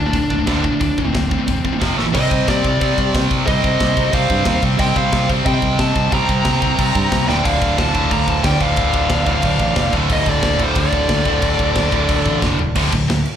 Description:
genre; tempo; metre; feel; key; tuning
heavy metal; 181 BPM; 4/4; straight; unclear; A4 = 439 Hz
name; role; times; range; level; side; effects
high-gain lead guitar; melody; 0.0-12.4 s; D4 to Bb5; -21 LUFS; left 2 dB; distortion, slapback echo
pipe organ, trumpet; sustained chords; 0.0-2.1, 7.4-12.7 s; D3 to C6; -33 LUFS; left 1 dB; none
distorted electric guitar; riff; 0.0-13.2 s; D2 to C4; -21 LUFS; right 9 dB; overdrive
heavy high-gain guitar; riff; 0.0-13.2 s; D2 to C4; -23 LUFS; left 12 dB; distortion
picked electric bass; bass; 0.0-13.2 s; D1 to C3; -20 LUFS; left 1 dB; none
tight metal drum kit; drums; 0.1-13.3 s; crash cymbal, hi-hat, kick drum, snare drum, toms; -22 LUFS; equal; none
high-gain lead guitar; second line; 2.1-12.4 s; G4 to G5; -28 LUFS; right 3 dB; distortion, slapback echo, ping-pong delay
room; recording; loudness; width
little or no reverb; live gig heard through the venue's PA, club reverb; -14 LUFS; side -9 dB against mid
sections
0.0-2.1 A section; 2.1-12.8 B section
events
drum fill 2.0, 7.3, 12.4-12.8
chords
0.0 Dm; 1.8 F5; 2.0 A5; 2.1 Cm; 7.3 Dm; 12.8 D5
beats
0.14 0.47 | 0.81 1.14 1.47 1.80 | 2.14 2.47 2.80 3.13 | 3.46 3.80 4.13 4.46 | 4.79 5.12 5.46 5.79 | 6.12 6.45 6.78 7.11 | 7.45 7.78 8.11 8.44 | 8.77 9.10 9.44 9.77 | 10.10 10.43 10.76 11.09 | 11.43 11.76 12.09 12.42 | 12.75 13.08

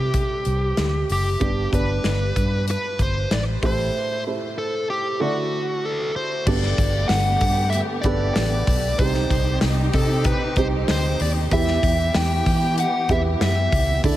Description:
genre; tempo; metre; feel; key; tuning
piano-driven pop; 95 BPM; 4/4; straight; G major; A4 = 440 Hz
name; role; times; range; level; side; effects
dark smooth lead guitar; melody; 0.0-14.2 s; F#4 to G5; -24 LUFS; equal; overdrive
dark upright piano; accompaniment; 0.0-14.2 s; G2 to D5; -27 LUFS; right 3 dB; wide subtle chorus
vintage muted fingered electric bass; bass; 0.0-14.2 s; F#1 to E3; -22 LUFS; equal; none
modern studio drum kit; drums; 0.1-14.2 s; crash cymbal, hi-hat, kick drum, snare drum; -24 LUFS; equal; none
warm studio string section; sustained chords; 6.5-14.2 s; D3 to G4; -29 LUFS; left 1 dB; none
room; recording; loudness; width
moderate huge ambient reverb, RT60 7.0 s; dreamy mix soaked in reverb; -19 LUFS; side -14 dB against mid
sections
0.0-6.5 A section; 6.5-14.2 B section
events
break 3.9-6.5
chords
0.0 C; 1.4 G; 3.6 Am7; 5.2 Dadd9; 6.5 Gadd9; 9.0 Cm; 11.5 Em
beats
0.14 0.77 | 1.40 2.04 2.67 3.30 | 3.93 4.57 5.20 5.83 | 6.46 7.09 7.73 8.36 | 8.99 9.62 10.25 10.88 | 11.52 12.15 12.78 13.41 | 14.04

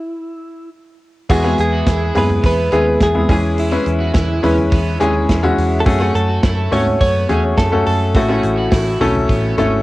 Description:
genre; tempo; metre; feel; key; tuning
piano-driven pop; 105 BPM; 4/4; straight; E major; A4 = 440 Hz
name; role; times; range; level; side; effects
direct-recorded clean electric guitar; melody; 0.0-9.8 s; E4 to C#5; -21 LUFS; right 1 dB; wide subtle chorus, cassette tape
bright upright piano; accompaniment; 1.3-9.8 s; A2 to B4; -17 LUFS; left 1 dB; cassette tape
vintage muted picked electric bass; bass; 1.3-9.8 s; G#1 to G#2; -19 LUFS; equal; none
natural country drum kit; drums; 1.3-9.7 s; crash cymbal, hi-hat, kick drum, snare drum, toms; -19 LUFS; equal; cassette tape
overdriven semi-hollow guitar; riff; 1.4-9.7 s; B3 to G#4; -29 LUFS; right 4 dB; cassette tape
room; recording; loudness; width
light reverb, small room ambience; home recording on cassette; -13 LUFS; side -18 dB against mid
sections
0.0-1.3 A section; 1.3-9.8 B section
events
stop 0.0-1.3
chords
0.0 N.C.; 1.3 E; 5.9 F#m; 8.2 A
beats
0.15 0.72 | 1.29 1.86 2.44 3.01 | 3.58 4.15 4.72 5.29 | 5.86 6.44 7.01 7.58 | 8.15 8.72 9.29

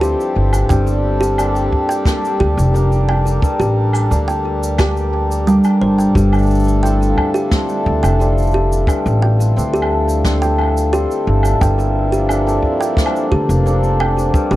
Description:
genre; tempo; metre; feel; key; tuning
folktronica; 88 BPM; 4/4; straight; G dorian; A4 = 440 Hz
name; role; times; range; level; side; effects
kalimba; second line; 0.0-14.6 s; G3 to G5; -20 LUFS; right 1 dB; tape echo
pedal harmonium; sustained chords; 0.0-14.6 s; D3 to Bb4; -22 LUFS; equal; vintage 12-bit sampler grit
hammered dulcimer; arpeggios; 0.0-14.6 s; G2 to A4; -21 LUFS; left 2 dB; tape echo
upright bass; bass; 0.0-14.6 s; F1 to D2; -16 LUFS; equal; none
cabasa, woodblock and snare drum; drums; 0.0-14.6 s; none; -25 LUFS; right 1 dB; none
kick drum; drums; 0.7-14.5 s; none; -16 LUFS; equal; none
room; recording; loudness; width
little or no reverb; none; -13 LUFS; side -16 dB against mid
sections
0.0-14.6 A section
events
none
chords
0.0 Fmaj7; 0.7 Gm7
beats
0.02 | 0.70 1.38 2.06 2.75 | 3.43 4.11 4.79 5.47 | 6.16 6.84 7.52 8.20 | 8.88 9.56 10.25 10.93 | 11.61 12.29 12.97 13.66 | 14.34

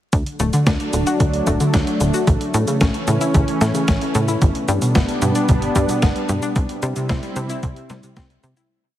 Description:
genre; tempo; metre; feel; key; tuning
italo disco; 112 BPM; 4/4; straight; D major; A4 = 440 Hz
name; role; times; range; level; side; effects
lush unison pad; sustained chords; 0.5-8.7 s; E3 to E4; -22 LUFS; equal; chorus
analog pluck; arpeggios; 0.1-8.7 s; B2 to F#4; -23 LUFS; left 2 dB; chorus, vintage 12-bit sampler grit, digital delay
tight sequencer bass; bass; 0.1-8.5 s; D1 to C3; -22 LUFS; equal; tube saturation, digital delay
clean 12-bit digital drum machine; drums; 0.1-8.7 s; cabasa, hi-hat, snare drum; -26 LUFS; equal; small room ambience
electronic kick drum; drums; 0.1-8.3 s; none; -19 LUFS; equal; small room ambience
room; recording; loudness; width
light reverb; heavily compressed radio sound, vinyl crackle; -16 LUFS; side -12 dB against mid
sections
0.1-8.7 verse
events
fade-out 5.8-8.7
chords
0.1 D; 2.3 A; 4.4 G; 6.6 C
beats
| 0.13 0.67 1.20 1.74 | 2.27 2.81 3.35 3.88 | 4.42 4.95 5.49 6.02 | 6.56 7.10 7.63 8.17

